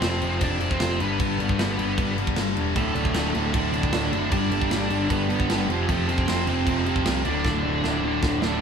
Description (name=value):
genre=punk rock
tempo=154 BPM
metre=4/4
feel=straight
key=unclear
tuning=A4 = 440 Hz
part: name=high-gain lead guitar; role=melody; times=0.0-8.6 s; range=A3 to D5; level=-30 LUFS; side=right 2 dB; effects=distortion
part: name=distorted electric guitar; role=riff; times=0.0-8.6 s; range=D2 to G3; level=-28 LUFS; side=left 6 dB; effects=distortion
part: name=high-gain distorted guitar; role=riff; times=0.0-8.6 s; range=D2 to G3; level=-30 LUFS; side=right 2 dB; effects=distortion
part: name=overdriven picked electric bass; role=bass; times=0.0-8.6 s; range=D1 to C2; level=-29 LUFS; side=equal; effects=none
part: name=tight metal drum kit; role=drums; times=0.0-8.5 s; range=crash cymbal, kick drum, snare drum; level=-27 LUFS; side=equal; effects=none
part: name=distorted electric guitar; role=riff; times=2.8-8.6 s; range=D2 to G3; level=-29 LUFS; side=right 10 dB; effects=distortion
room=moderate studio reverb, RT60 0.8 s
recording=band playing live in one room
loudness=-21 LUFS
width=side -6 dB against mid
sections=0.0-8.6 A section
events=drum fill 7.4-8.6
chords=0.0 F5; 1.0 G; 2.8 D5; 4.3 G; 5.7 F; 7.3 D5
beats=0.03 0.42 0.81 | 1.20 1.59 1.98 2.37 | 2.76 3.15 3.54 3.93 | 4.32 4.71 5.11 5.50 | 5.89 6.28 6.67 7.06 | 7.45 7.84 8.23